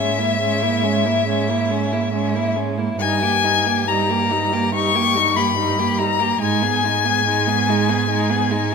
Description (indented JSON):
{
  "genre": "classical, slow romantic movement for string quartet",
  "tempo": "68-73 BPM",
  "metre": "4/4",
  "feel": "rubato",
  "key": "G# minor",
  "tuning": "A4 = 441 Hz",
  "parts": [
    { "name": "rich violin", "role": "melody", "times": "0.0-8.7 s", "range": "E5 to C#6", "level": "-19 LUFS", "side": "left 8 dB", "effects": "none" },
    { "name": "clear violin", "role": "second line", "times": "0.0-8.7 s", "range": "C#4 to G#4", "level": "-25 LUFS", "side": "left 2 dB", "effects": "none" },
    { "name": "rich viola", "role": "accompaniment", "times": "0.0-8.7 s", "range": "G3 to B3", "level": "-24 LUFS", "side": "right 6 dB", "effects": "none" },
    { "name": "rich cello", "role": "bass", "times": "0.0-8.7 s", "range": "G2 to G#2", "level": "-24 LUFS", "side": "right 7 dB", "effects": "none" }
  ],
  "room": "wet recital hall reverb, RT60 1.8 s",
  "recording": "none",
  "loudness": "-16 LUFS",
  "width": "side -5 dB against mid",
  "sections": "0.0-8.7 A section",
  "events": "none",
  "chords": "0.0 A#m7b5/G#; 3.0 D#/G; 6.4 G#m",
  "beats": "0.40 1.27 2.13 | 2.99 3.88 4.74 5.57 | 6.41 7.26 8.10"
}